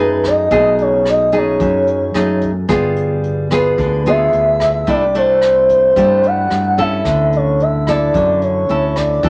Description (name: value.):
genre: bossa nova.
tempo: 110 BPM.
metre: 4/4.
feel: straight.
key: unclear.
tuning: A4 = 440 Hz.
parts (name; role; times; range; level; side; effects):
pure breathy sine lead; melody; 0.0-9.3 s; B4 to F#5; -16 LUFS; equal; chorus.
nylon-string guitar; accompaniment; 0.0-9.3 s; F#2 to A4; -20 LUFS; equal; none.
fingered electric bass; bass; 0.0-9.3 s; G1 to G2; -23 LUFS; equal; none.
jazz brush drum kit; drums; 0.2-9.3 s; hi-hat, kick drum, rim click; -30 LUFS; equal; none.
room: moderate studio reverb, RT60 0.6 s.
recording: none.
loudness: -14 LUFS.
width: mono.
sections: 0.0-9.3 A section.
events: none.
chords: 0.0 B13; 2.7 G7b9; 4.9 C69; 7.1 Dmaj9.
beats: | 0.50 1.05 1.60 2.14 | 2.69 3.23 3.78 4.33 | 4.87 5.42 5.96 6.51 | 7.05 7.60 8.14 8.69 | 9.23.